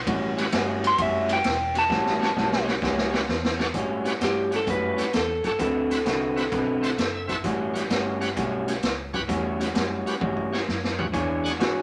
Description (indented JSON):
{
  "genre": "electric blues shuffle",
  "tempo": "130 BPM",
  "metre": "4/4",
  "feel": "swing 67% on 8ths",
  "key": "A mixolydian",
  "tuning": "A4 = 440 Hz",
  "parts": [
    { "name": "vintage muted fingered electric bass", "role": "bass", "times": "0.0-11.8 s", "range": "E1 to A2", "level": "-38 LUFS", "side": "equal", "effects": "none" },
    { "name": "electric guitar through a small old amp", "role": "riff", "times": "0.1-11.8 s", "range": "A2 to C#5", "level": "-30 LUFS", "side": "equal", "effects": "spring reverb" },
    { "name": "raw garage drum kit", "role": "drums", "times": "0.1-11.8 s", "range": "hi-hat, kick drum, ride cymbal, snare drum, toms", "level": "-30 LUFS", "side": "equal", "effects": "none" },
    { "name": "bright tonewheel organ", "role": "accompaniment", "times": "0.4-11.5 s", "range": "C4 to A5", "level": "-34 LUFS", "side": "equal", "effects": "slow rotary speaker, overdrive" },
    { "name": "electric slide guitar", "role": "melody", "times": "0.9-7.3, 11.6-11.8 s", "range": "F#4 to C6", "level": "-27 LUFS", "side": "equal", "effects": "none" }
  ],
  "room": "moderate studio reverb, RT60 0.6 s",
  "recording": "none",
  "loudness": "-25 LUFS",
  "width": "mono",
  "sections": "0.0-3.8 A section; 3.8-11.8 B section",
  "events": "electric slide guitar solo 0.0-3.8; drum fill 1.9-3.8, 10.2-11.1; tonewheel organ fill 6.5-7.4",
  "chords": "0.1 A13; 5.6 D13; 7.4 A13; 11.1 E13"
}